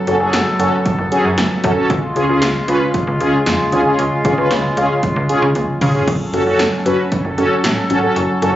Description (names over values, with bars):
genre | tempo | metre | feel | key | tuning
synth-pop | 115 BPM | 4/4 | straight | F# harmonic minor | A4 = 442 Hz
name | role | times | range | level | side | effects
warm brass ensemble | sustained chords | 0.0-8.6 s | C#3 to A4 | -19 LUFS | equal | none
mellow synth brass | accompaniment | 0.1-8.5 s | C#4 to B4 | -16 LUFS | equal | chorus, phaser
slap-like FM bass | bass | 0.1-8.5 s | F#1 to C#3 | -21 LUFS | equal | none
80s electronic pad drums | drums | 0.1-8.5 s | crash cymbal, hi-hat, kick drum, snare drum, toms | -21 LUFS | equal | gated reverb on snare and toms
room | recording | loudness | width
moderate scoring stage reverb, RT60 1.9 s, digital ambience | recorded on a phone in the room, club reverb, nothing above 7.7 kHz | -13 LUFS | side -13 dB against mid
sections
0.0-6.1 A section; 6.1-8.6 A section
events
drum fill 5.6-6.1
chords
0.0 F#m; 1.9 C#; 6.1 F#m